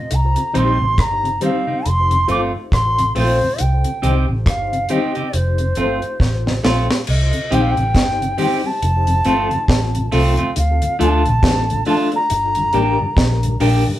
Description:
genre	roots reggae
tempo	69 BPM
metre	4/4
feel	swing 59% on 16ths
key	C dorian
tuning	A4 = 440 Hz
part	bright bansuri	melody	0.0-13.6 s	C5 to D6	-20 LUFS	equal	none
part	vintage muted fingered electric bass	bass	0.1-13.8 s	F1 to D2	-19 LUFS	equal	none
part	deep reggae drum kit	drums	0.1-13.8 s	crash cymbal, hi-hat, kick drum, rim click, snare drum	-20 LUFS	equal	none
part	mellow tonewheel organ	accompaniment	0.4-13.9 s	D2 to D4	-25 LUFS	left 2 dB	overdrive, chorus vibrato, slow rotary speaker
part	clean electric guitar	accompaniment	0.5-13.9 s	G3 to G4	-22 LUFS	right 3 dB	none
part	mellow reed electric piano	stabs	0.5-13.8 s	C4 to C5	-25 LUFS	left 5 dB	fast tremolo, tape echo
room	moderate studio reverb, RT60 0.6 s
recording	band playing live in one room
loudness	-15 LUFS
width	side -13 dB against mid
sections	0.0-7.1 A section; 7.1-14.0 B section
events	drum fill 6.2-7.1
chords	0.1 Cm; 1.9 F; 3.6 Cm; 5.3 F; 7.1 Cm; 8.8 F; 10.6 Dm; 12.3 Gm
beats	| 0.11 0.98 1.85 2.73 | 3.60 4.47 5.34 6.21 | 7.08 7.95 8.82 9.69 | 10.56 11.43 12.30 13.17

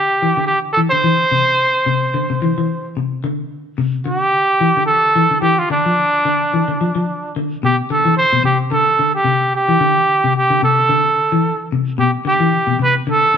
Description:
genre	afrobeat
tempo	110 BPM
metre	4/4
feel	swing 55% on 16ths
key	A minor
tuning	A4 = 440 Hz
part	breathy trumpet	melody	0.0-13.3 s	D4 to C5	-14 LUFS	right 2 dB	none
part	semi-hollow electric guitar	arpeggios	0.2-13.4 s	B2 to F3	-18 LUFS	left 4 dB	none
room	wet echo chamber reverb, RT60 1.5 s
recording	none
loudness	-13 LUFS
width	side -8 dB against mid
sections	0.0-7.6 A section; 7.6-13.4 B section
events	none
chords	0.0 Cadd9; 3.2 G5; 7.6 Am11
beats	0.50 | 1.05 1.60 2.15 2.70 | 3.25 3.79 4.34 4.89 | 5.44 5.99 6.53 7.08 | 7.62 8.17 8.71 9.26 | 9.80 10.35 10.89 11.44 | 11.98 12.53 13.07

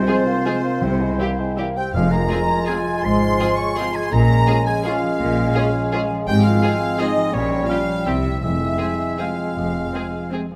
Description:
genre	classical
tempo	152-180 BPM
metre	3/4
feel	rubato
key	F minor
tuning	A4 = 439 Hz
part	bright large flute ensemble	second line	0.0-10.3 s	C5 to Db6	-33 LUFS	equal	none
part	bright studio violin section	second line	0.0-10.3 s	C5 to Db6	-34 LUFS	equal	none
part	warm clarinet	second line	0.0-10.5 s	C4 to F4	-30 LUFS	equal	none
part	warm oboe	second line	0.0-10.3 s	C5 to Db6	-30 LUFS	equal	none
part	mellow French horn section	sustained chords	0.0-10.3 s	C4 to Db5	-30 LUFS	equal	none
part	concert harp	arpeggios	0.0-10.6 s	F2 to Db5	-32 LUFS	equal	none
part	timpani	percussion	0.0-2.5 s	F2 to C3	-29 LUFS	equal	none
part	rich studio violin section	melody	0.1-10.4 s	G4 to Ab4	-33 LUFS	equal	none
part	clear studio viola section	accompaniment	0.1-10.4 s	C4 to F4	-34 LUFS	equal	none
part	warm bassoon	accompaniment	0.1-10.5 s	G3 to C4	-28 LUFS	equal	none
part	bright trombone section	sustained chords	0.1-10.4 s	C3 to Ab3	-34 LUFS	equal	none
part	rich studio cello section	bass	0.8-9.9 s	F2 to C3	-26 LUFS	equal	none
part	rich studio double bass section	bass	0.8-9.9 s	F1 to C2	-28 LUFS	equal	none
room	moderate scoring stage reverb, RT60 1.6 s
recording	none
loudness	-20 LUFS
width	mono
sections	0.0-10.6 A section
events	none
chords	0.0 Fm/C; 0.8 C; 1.9 Fm; 3.0 Fm/Ab; 4.1 Bbm7; 6.3 Fm/Ab; 7.3 Gm7b5/Bb; 8.1 C; 8.4 Fm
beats	0.07 0.45 | 0.82 1.19 1.57 | 1.93 2.29 2.67 | 3.03 3.39 3.76 | 4.12 4.47 4.85 | 5.20 5.55 5.92 | 6.27 6.62 6.99 | 7.33 7.69 8.06 | 8.43 8.80 9.19 | 9.56 9.93 10.32

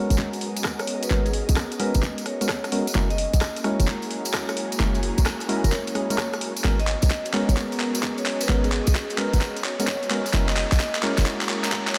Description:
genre	UK garage, two-step garage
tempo	130 BPM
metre	4/4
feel	swing 66% on 16ths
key	G# minor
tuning	A4 = 439 Hz
part	vibraphone with medium hard mallets	melody	0.0-12.0 s	G#4 to D#5	-34 LUFS	equal	low-pass filter, tape echo
part	soft string machine	sustained chords	0.0-12.0 s	A#3 to B4	-38 LUFS	equal	none
part	percussive organ stab	stabs	0.0-12.0 s	G#3 to A#4	-31 LUFS	equal	chorus, cassette tape, tape echo
part	ethereal airy pad	texture	0.0-12.0 s	F#4 to A#5	-40 LUFS	equal	ensemble chorus, built-in reverb, tremolo, sidechain pumping
part	short 808-style bass	bass	0.1-11.2 s	F#1 to B1	-24 LUFS	equal	tube saturation
part	garage drum kit	drums	0.1-12.0 s	handclaps, hi-hat, rim click	-31 LUFS	equal	high-pass filter on snare, studio reverb, high-pass filter on hats
part	tambourine	percussion	0.1-11.9 s	none	-38 LUFS	equal	none
part	electronic kick drum	drums	0.2-11.8 s	none	-35 LUFS	equal	high-pass filter on kick, studio reverb
room	moderate lush hall reverb, RT60 1.8 s, digital ambience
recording	dreamy mix soaked in reverb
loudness	-24 LUFS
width	mono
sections	0.0-12.0 A section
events	build-up 0.0-12.0; drum fill 0.0-12.0; filter sweep on synth stab 0.0-12.0; filter sweep on vibraphone 0.0-12.0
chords	0.0 G#m11; 3.0 F#9; 6.6 G#m11; 10.3 F#9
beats	0.18 0.64 | 1.11 1.57 2.03 2.49 | 2.95 3.41 3.88 4.34 | 4.80 5.26 5.72 6.18 | 6.64 7.11 7.57 8.03 | 8.49 8.95 9.41 9.88 | 10.34 10.80 11.26 11.72

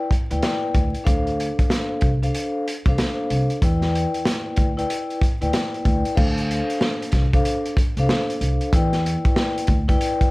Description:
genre	hip hop, boom-bap hip-hop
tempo	94 BPM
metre	4/4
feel	swing 63% on 16ths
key	D dorian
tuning	A4 = 440 Hz
part	vibraphone with soft mallets	accompaniment	0.0-10.3 s	D4 to G5	-24 LUFS	left 2 dB	high-pass filter, low-pass filter, plate reverb
part	crunchy breakbeat drum kit	drums	0.1-10.3 s	crash cymbal, hi-hat, kick drum, snare drum	-21 LUFS	equal	none
part	upright bass	bass	0.3-9.9 s	C2 to E2	-23 LUFS	equal	none
room	light reverb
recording	vinyl crackle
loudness	-19 LUFS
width	side -21 dB against mid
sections	0.0-6.2 A section; 6.2-10.3 B section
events	none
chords	0.0 Em7; 1.1 Dm7; 3.6 Em7; 6.2 Dm7; 8.7 Em7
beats	0.43 | 1.07 1.71 2.34 2.98 | 3.62 4.26 4.90 5.54 | 6.17 6.81 7.45 8.09 | 8.73 9.37 10.00

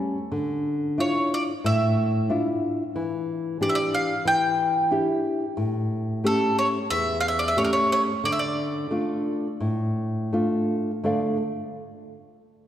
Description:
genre	fado-style ballad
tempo	90 BPM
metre	4/4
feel	rubato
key	D harmonic minor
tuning	A4 = 441 Hz
part	nylon-string guitar	accompaniment	0.0-11.4 s	E2 to F5	-24 LUFS	left 1 dB	none
part	bowl-back mandolin	melody	1.0-10.3 s	A4 to G5	-24 LUFS	right 1 dB	none
room	wet concert hall reverb, RT60 2.4 s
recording	recorded in a church or concert hall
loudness	-22 LUFS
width	side -11 dB against mid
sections	0.0-11.0 A section; 11.0-12.7 B section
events	none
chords	0.3 Dmadd9; 3.0 Em7; 5.6 A7; 8.2 Dm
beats	| 0.32 0.99 1.65 2.31 | 2.96 3.61 4.26 4.92 | 5.58 6.25 6.91 7.58 | 8.24 8.91 9.60 10.32 | 11.04

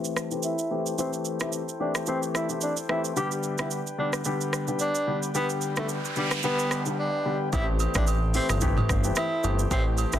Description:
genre	afrobeats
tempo	110 BPM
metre	4/4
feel	swing 55% on 16ths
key	A minor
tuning	A4 = 440 Hz
part	warm baby grand piano	accompaniment	0.0-10.2 s	D3 to G4	-29 LUFS	left 3 dB	low-pass filter, plate reverb
part	chamber organ, principal	sustained chords	0.0-10.2 s	D4 to G5	-37 LUFS	left 1 dB	low-pass filter, plate reverb
part	afro-pop drum kit	drums	0.0-10.2 s	hi-hat, kick drum, rim click, shaker, toms	-29 LUFS	right 1 dB	soft clipping on snare
part	breathy tenor saxophone	melody	0.4-10.2 s	G3 to G4	-31 LUFS	equal	low-pass filter, tape echo, plate reverb
part	noise sweep	sound effects	5.7-7.5 s	none	-34 LUFS	right 4 dB	none
part	fat analog bass	bass	7.5-10.2 s	G1 to A1	-26 LUFS	equal	none
part	agogo bells	percussion	7.5-10.1 s	none	-36 LUFS	right 8 dB	none
room	light reverb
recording	dense, heavily limited modern master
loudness	-24 LUFS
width	side -11 dB against mid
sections	0.0-7.5 A section; 7.5-10.2 B section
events	filter sweep 0.0-7.5; noise sweep 5.7-7.5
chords	0.0 Am7; 3.2 G; 7.5 Am7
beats	0.44 | 0.98 1.53 2.07 2.62 | 3.17 3.71 4.26 4.80 | 5.35 5.89 6.44 6.98 | 7.53 8.07 8.62 9.16 | 9.71

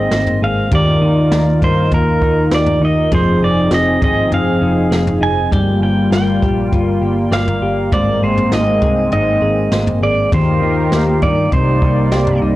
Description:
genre	dream pop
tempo	100 BPM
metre	4/4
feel	straight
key	F dorian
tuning	A4 = 440 Hz
part	pedal steel guitar	melody	0.0-12.4 s	Bb4 to Ab5	-18 LUFS	right 1 dB	analog delay
part	warm analog pad	sustained chords	0.0-12.6 s	C3 to D5	-18 LUFS	equal	chorus
part	semi-hollow electric guitar	arpeggios	0.0-12.6 s	C3 to D5	-18 LUFS	left 1 dB	analog chorus, analog delay
part	vintage muted picked electric bass	bass	0.0-12.6 s	F1 to G2	-20 LUFS	equal	none
part	jazz brush drum kit	drums	0.1-12.4 s	kick drum, snare drum, toms	-20 LUFS	equal	none
room	studio reverb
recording	dry, gritty hardware recording, cassette tape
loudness	-12 LUFS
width	side -16 dB against mid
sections	0.0-12.6 A section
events	none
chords	0.0 Abadd9; 0.7 Ebadd9; 3.1 Fm7; 5.5 Gm7; 7.9 Abadd9; 10.3 Ebadd9; 11.5 Cm7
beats	0.12 | 0.72 1.32 1.92 2.52 | 3.12 3.72 4.32 4.92 | 5.52 6.12 6.72 7.32 | 7.92 8.52 9.12 9.72 | 10.32 10.92 11.52 12.12

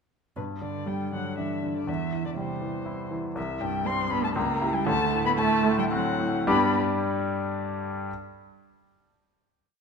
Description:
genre	quick classical-period movement for piano trio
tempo	105-123 BPM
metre	3/4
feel	rubato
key	G major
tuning	A4 = 440 Hz
part	muted violin	melody	0.4-6.8 s	B4 to C6	-30 LUFS	left 5 dB	none
part	muted cello	second line	0.4-6.8 s	B2 to C4	-30 LUFS	right 6 dB	none
part	bright grand piano	accompaniment	0.4-8.1 s	C2 to D5	-27 LUFS	left 1 dB	none
room	moderate scoring stage reverb, RT60 1.8 s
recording	minimal, uncompressed stereo recording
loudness	-24 LUFS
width	side -5 dB against mid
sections	0.4-6.5 A section; 6.5-8.1 final chord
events	slowing down 2.6-6.5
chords	0.4 G5; 1.9 C/E; 3.4 C5; 4.4 C#dim7; 4.9 D7; 6.5 G5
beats	| 0.37 0.87 1.38 | 1.88 2.37 2.87 | 3.37 3.86 4.36 | 4.86 5.38 5.91 | 6.47 7.01 7.54

